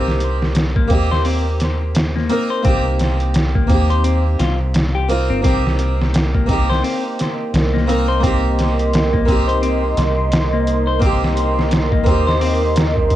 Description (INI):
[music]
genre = trip hop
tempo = 86 BPM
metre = 4/4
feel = swing 59% on 16ths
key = C minor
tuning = A4 = 439 Hz
[part]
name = harpsichord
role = accompaniment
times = 0.0-13.2 s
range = Bb3 to Bb4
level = -22 LUFS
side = right 1 dB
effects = harmonic tremolo, cassette tape, tape echo
[part]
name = semi-hollow electric guitar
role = arpeggios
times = 0.0-12.6 s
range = Bb3 to C5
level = -24 LUFS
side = left 6 dB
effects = cassette tape, tape echo
[part]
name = deep dub fingered electric bass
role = bass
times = 0.0-13.2 s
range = G1 to Eb2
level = -19 LUFS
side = equal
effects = tube saturation
[part]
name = trip hop sampler-style drum kit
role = drums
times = 0.1-13.2 s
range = hi-hat, kick drum, snare drum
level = -19 LUFS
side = equal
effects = overdrive, cassette tape
[part]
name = deep dark ambient pad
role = sustained chords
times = 6.2-13.2 s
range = Bb4 to C6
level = -21 LUFS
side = right 2 dB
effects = chorus, built-in reverb, vintage 12-bit sampler grit, cassette tape
[sound]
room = little or no reverb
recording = home recording on cassette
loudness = -14 LUFS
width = side -13 dB against mid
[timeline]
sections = 0.0-13.2 A section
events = none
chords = 0.0 Cm7